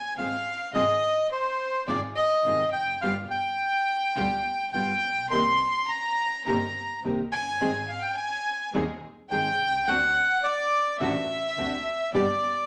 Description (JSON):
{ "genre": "tango", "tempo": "105 BPM", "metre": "4/4", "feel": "rubato", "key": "C minor", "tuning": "A4 = 441 Hz", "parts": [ { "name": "bandoneon", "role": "melody", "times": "0.0-12.7 s", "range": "C5 to C6", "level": "-28 LUFS", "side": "equal", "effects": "none" }, { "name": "warm violin", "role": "second line", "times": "0.0-12.7 s", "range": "C5 to C6", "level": "-33 LUFS", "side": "equal", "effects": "none" }, { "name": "nylon-string guitar", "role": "accompaniment", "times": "0.2-12.2 s", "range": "B2 to Ab4", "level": "-32 LUFS", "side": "equal", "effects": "none" }, { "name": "dark symphonic string section", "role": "stabs", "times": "0.2-12.4 s", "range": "B3 to Bb4", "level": "-39 LUFS", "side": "equal", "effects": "none" }, { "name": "clear double bass", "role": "bass", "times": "0.2-12.4 s", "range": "F1 to Eb2", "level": "-41 LUFS", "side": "equal", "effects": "none" } ], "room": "wet studio reverb, RT60 0.7 s", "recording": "none", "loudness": "-26 LUFS", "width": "mono", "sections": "0.0-12.7 A section", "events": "none", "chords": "0.0 Ab6; 0.7 Fm7/Ab; 3.0 G7; 5.3 Cm7; 7.6 Ab; 9.9 D7; 12.1 G" }